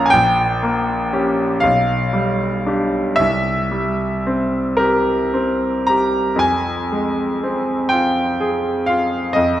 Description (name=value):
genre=classical, romantic nocturne for solo piano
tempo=36-43 BPM (dotted quarters)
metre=12/8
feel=rubato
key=F minor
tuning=A4 = 441 Hz
part: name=clear grand piano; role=solo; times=0.0-9.6 s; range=Bb1 to Bb5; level=-16 LUFS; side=equal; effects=none
room=wet recital hall reverb, RT60 1.4 s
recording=none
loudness=-16 LUFS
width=side -12 dB against mid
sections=0.0-9.6 A section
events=none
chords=0.1 Gdim/Bb; 1.6 G7/B; 3.2 C; 6.4 Fm